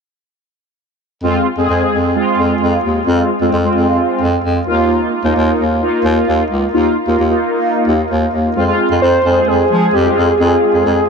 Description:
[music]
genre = synth-pop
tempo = 131 BPM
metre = 4/4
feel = straight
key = F minor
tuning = A4 = 440 Hz
[part]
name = mellow synth brass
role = accompaniment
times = 1.2-10.9 s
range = Ab3 to Ab4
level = -15 LUFS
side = equal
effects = chorus, phaser
[part]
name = warm bass clarinet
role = bass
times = 1.2-11.0 s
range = Db2 to F3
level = -16 LUFS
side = equal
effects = none
[part]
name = wide unison lead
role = melody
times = 9.0-11.1 s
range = G4 to C5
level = -12 LUFS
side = equal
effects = tape echo
[sound]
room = wet huge ambient reverb, RT60 8.9 s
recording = dreamy mix soaked in reverb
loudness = -12 LUFS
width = side -5 dB against mid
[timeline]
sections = 1.2-8.6 A section; 8.6-11.1 B section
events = none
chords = 1.2 Fm; 4.7 Ebsus2; 8.6 Fm

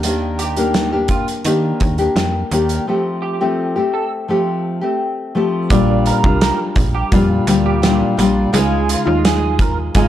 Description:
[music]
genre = indie pop, bedroom pop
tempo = 85 BPM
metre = 4/4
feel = straight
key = Bb major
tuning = A4 = 440 Hz
[part]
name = nylon-string guitar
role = accompaniment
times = 0.0-10.1 s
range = Bb2 to G4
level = -16 LUFS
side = left 2 dB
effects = wide subtle chorus, warbly pitch drift
[part]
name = slap-like FM bass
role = bass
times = 0.0-10.1 s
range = Ab1 to Eb3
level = -20 LUFS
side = right 1 dB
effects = transformer saturation
[part]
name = loose indie drum kit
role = drums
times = 0.0-10.1 s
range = hi-hat, kick drum, snare drum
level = -19 LUFS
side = right 1 dB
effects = none
[part]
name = electric guitar through a small old amp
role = second line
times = 0.4-10.1 s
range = F4 to D5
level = -24 LUFS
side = right 7 dB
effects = ensemble chorus, tape echo
[sound]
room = light reverb, small room ambience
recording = none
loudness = -14 LUFS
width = side -12 dB against mid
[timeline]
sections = 0.0-5.7 A section; 5.7-10.1 B section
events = none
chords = 0.0 Ebmaj7; 2.9 Fadd9; 5.7 Bb6; 8.5 Dbadd9

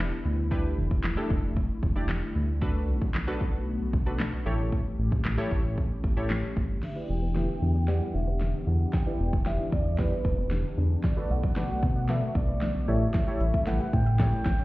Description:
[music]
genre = dance-pop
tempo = 114 BPM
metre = 4/4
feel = straight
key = E dorian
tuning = A4 = 445 Hz
[part]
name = analog pluck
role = accompaniment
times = 0.0-14.6 s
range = D4 to E5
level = -35 LUFS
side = right 1 dB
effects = chorus, sidechain pumping, low-pass filter
[part]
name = airy breathy pad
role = sustained chords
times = 0.0-14.6 s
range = C#3 to G4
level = -36 LUFS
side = left 2 dB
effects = chorus, sidechain pumping, low-pass filter
[part]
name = round analog bass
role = bass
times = 0.0-14.6 s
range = E1 to B2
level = -27 LUFS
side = equal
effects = sidechain pumping
[part]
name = pop drum kit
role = drums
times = 0.5-14.6 s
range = crash cymbal, handclaps, hi-hat, kick drum, snare drum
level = -28 LUFS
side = equal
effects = none
[part]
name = mellow horn-like synth lead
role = melody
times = 6.8-14.6 s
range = B4 to G5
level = -35 LUFS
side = right 1 dB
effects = chorus, low-pass filter, tape echo
[part]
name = analog pluck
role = arpeggios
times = 6.8-14.6 s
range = D3 to E5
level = -40 LUFS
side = left 1 dB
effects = none
[sound]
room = little or no reverb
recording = heard muffled through a wall, stone room reverb, EQ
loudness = -25 LUFS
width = side -19 dB against mid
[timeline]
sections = 0.0-6.8 A section; 6.8-14.6 B section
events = build-up 6.8-14.6; drum fill 6.8-14.6; filter sweep 6.8-14.6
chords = 0.0 Em7; 2.6 Bm7; 4.5 A7; 6.8 Em7; 11.0 Bm7; 12.9 A7

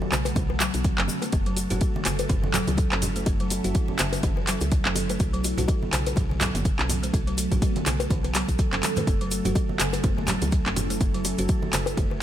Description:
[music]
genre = afro house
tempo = 124 BPM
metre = 4/4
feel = swing 57% on 16ths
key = F# minor pentatonic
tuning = A4 = 441 Hz
[part]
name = ethereal airy pad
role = sustained chords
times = 0.0-12.2 s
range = F#3 to A4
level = -32 LUFS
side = right 2 dB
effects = ensemble chorus, built-in reverb, phaser, sidechain pumping
[part]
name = congas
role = percussion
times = 0.0-12.1 s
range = none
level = -33 LUFS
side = right 3 dB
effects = none
[part]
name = buzzing kalimba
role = arpeggios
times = 0.1-12.1 s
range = C#3 to F#4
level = -30 LUFS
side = equal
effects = vintage 12-bit sampler grit, sidechain pumping, ping-pong delay
[part]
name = woody FM bass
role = bass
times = 0.1-12.2 s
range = F#1 to C#2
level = -29 LUFS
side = equal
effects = sidechain pumping
[part]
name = afro-pop drum kit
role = drums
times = 0.1-12.1 s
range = handclaps, hi-hat, toms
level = -28 LUFS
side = right 1 dB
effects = none
[part]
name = bongos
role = percussion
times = 0.1-12.2 s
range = none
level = -34 LUFS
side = left 7 dB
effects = none
[part]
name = tube shaker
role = percussion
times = 0.1-12.1 s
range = none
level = -36 LUFS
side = left 5 dB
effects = none
[part]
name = electronic kick drum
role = drums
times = 0.4-12.1 s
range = none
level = -24 LUFS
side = equal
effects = overdrive
[sound]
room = small room ambience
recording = faint mains hum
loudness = -22 LUFS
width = side -11 dB against mid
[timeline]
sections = 0.0-12.2 A section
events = drum fill 8.8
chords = 0.0 B5; 1.3 F#m7; 5.2 B5; 9.1 F#m7

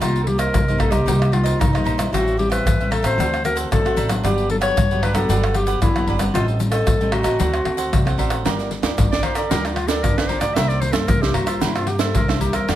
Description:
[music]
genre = samba and choro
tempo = 114 BPM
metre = 4/4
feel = straight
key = G minor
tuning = A4 = 445 Hz
[part]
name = clear clarinet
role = second line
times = 0.0-12.8 s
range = D4 to E5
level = -23 LUFS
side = left 2 dB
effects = none
[part]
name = cavaquinho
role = accompaniment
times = 0.0-12.8 s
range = D4 to G5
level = -28 LUFS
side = right 8 dB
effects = none
[part]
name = nylon-string guitar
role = accompaniment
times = 0.0-12.8 s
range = G2 to Bb4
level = -26 LUFS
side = left 2 dB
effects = none
[part]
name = upright bass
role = bass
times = 0.0-12.8 s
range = G1 to C3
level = -23 LUFS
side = right 1 dB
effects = none
[part]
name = agogo bells, egg shaker, surdo, pandeiro, tamborim and caixa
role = percussion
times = 0.0-12.8 s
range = none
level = -21 LUFS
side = equal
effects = none
[sound]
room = moderate large studio reverb, RT60 1.3 s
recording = close, detailed microphones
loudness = -17 LUFS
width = side -12 dB against mid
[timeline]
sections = 0.0-8.5 A section; 8.5-12.8 B section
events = clarinet solo 0.0-8.5, 8.5-12.8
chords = 0.0 Cm7; 2.1 Am7; 3.2 D7; 4.2 Gmaj7; 6.3 Am7b5; 7.4 D7; 8.5 Gm7; 10.6 C7

